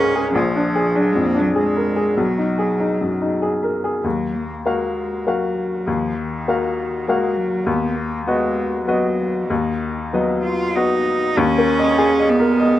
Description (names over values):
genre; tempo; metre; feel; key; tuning
neoclassical piano and strings; 98 BPM; 3/4; rubato; Eb minor; A4 = 440 Hz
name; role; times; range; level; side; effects
rich cello; second line; 0.0-12.8 s; Eb3 to F4; -23 LUFS; right 3 dB; none
bright upright piano; accompaniment; 0.0-12.8 s; Bb1 to F5; -18 LUFS; left 2 dB; plate reverb
room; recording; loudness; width
moderate small room reverb, RT60 0.5 s; rough home demo mix; -17 LUFS; side -13 dB against mid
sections
0.0-4.0 A section; 4.0-11.4 B section; 11.4-12.8 C section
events
none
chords
0.3 Bb7; 2.2 Abm7/Cb; 4.0 Ebmadd9; 7.7 B/D#; 11.4 Abmadd9/Eb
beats
| 0.34 0.94 1.55 | 2.17 2.79 3.42 | 4.05 4.66 5.27 | 5.87 6.47 7.07 | 7.67 8.27 8.88 | 9.50 10.13 10.75 | 11.37 11.98 12.59